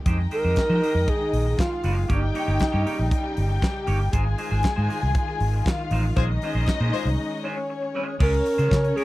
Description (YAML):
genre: disco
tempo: 118 BPM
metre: 4/4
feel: straight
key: unclear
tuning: A4 = 440 Hz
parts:
  - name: clear studio string section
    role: sustained chords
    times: 0.0-8.2 s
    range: Db3 to G5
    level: -35 LUFS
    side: left 1 dB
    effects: none
  - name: dark studio string section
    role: second line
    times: 0.1-9.0 s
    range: Db4 to Ab5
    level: -29 LUFS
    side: left 3 dB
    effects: none
  - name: clean electric guitar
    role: accompaniment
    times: 0.1-9.0 s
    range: Ab3 to Db5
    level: -33 LUFS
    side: right 2 dB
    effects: none
  - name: vintage muted fingered electric bass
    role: bass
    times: 0.1-8.9 s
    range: Gb1 to F3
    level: -23 LUFS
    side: equal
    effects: none
  - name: modern studio drum kit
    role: drums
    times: 0.1-9.0 s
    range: crash cymbal, handclaps, hi-hat, kick drum, snare drum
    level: -25 LUFS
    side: equal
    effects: none
  - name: mellow reedy alto flute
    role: melody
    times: 0.3-3.6, 8.2-9.0 s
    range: Eb4 to Bb4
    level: -25 LUFS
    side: right 2 dB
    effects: none
  - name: warm horn section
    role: stabs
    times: 6.2-7.1 s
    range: F4 to C5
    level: -29 LUFS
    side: left 13 dB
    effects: none
room: little or no reverb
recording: dry, close 1970s-style studio recording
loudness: -21 LUFS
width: side -17 dB against mid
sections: 0.1-8.2 A section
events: band accent 6.2-8.2; break 7.2-8.2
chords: 0.1 Fm9; 2.1 Eb7/G; 4.1 Ab6; 6.2 Bbm9; 8.2 Db6